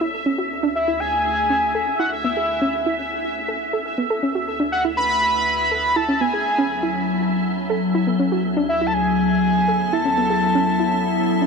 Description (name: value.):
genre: IDM.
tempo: 121 BPM.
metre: 4/4.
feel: straight.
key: D lydian.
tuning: A4 = 440 Hz.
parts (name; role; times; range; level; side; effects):
soft round pluck; arpeggios; 0.0-11.5 s; B3 to A4; -24 LUFS; right 2 dB; chorus, digital delay.
bubbling stepped-filter texture; texture; 0.0-11.5 s; E5; -30 LUFS; right 2 dB; chorus, built-in reverb.
icy glass pad; sustained chords; 0.3-11.5 s; D2 to E5; -24 LUFS; left 2 dB; chorus, built-in reverb.
warbly nostalgic lead; melody; 0.8-11.5 s; E5 to B5; -21 LUFS; equal; chorus, digital delay.
room: moderate huge ambient reverb, RT60 7.6 s.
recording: none.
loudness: -18 LUFS.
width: side -5 dB against mid.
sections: 0.0-11.5 A section.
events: none.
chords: 0.3 Dmaj7sus2; 2.2 Asus2; 4.2 Dmaj7sus2; 6.2 Amaj7sus2 (rootless); 8.2 Dmaj9; 10.2 Amaj9.